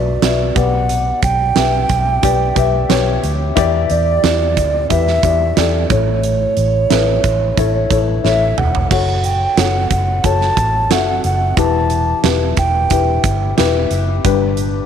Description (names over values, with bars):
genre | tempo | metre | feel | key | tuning
piano-driven pop | 90 BPM | 4/4 | straight | unclear | A4 = 439 Hz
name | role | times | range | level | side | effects
breathy alto ocarina | melody | 0.0-13.5 s | C#5 to A5 | -18 LUFS | right 2 dB | none
dark baby grand piano | accompaniment | 0.0-14.9 s | G2 to E5 | -19 LUFS | left 11 dB | none
vintage muted fingered electric bass | bass | 0.0-14.8 s | E1 to E2 | -18 LUFS | right 1 dB | none
huge arena drum kit | drums | 0.2-14.7 s | crash cymbal, hi-hat, kick drum, snare drum, toms | -19 LUFS | right 6 dB | none
room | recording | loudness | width
moderate echo chamber reverb, RT60 2.5 s | 1960s-style stereo with parts hard left and right | -13 LUFS | side -8 dB against mid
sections
0.0-8.9 A section; 8.9-14.9 B section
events
drum fill 8.2-8.9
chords
0.0 Bm; 0.6 G/B; 3.6 Em7; 5.9 A; 8.9 F#m; 11.6 Em; 14.2 G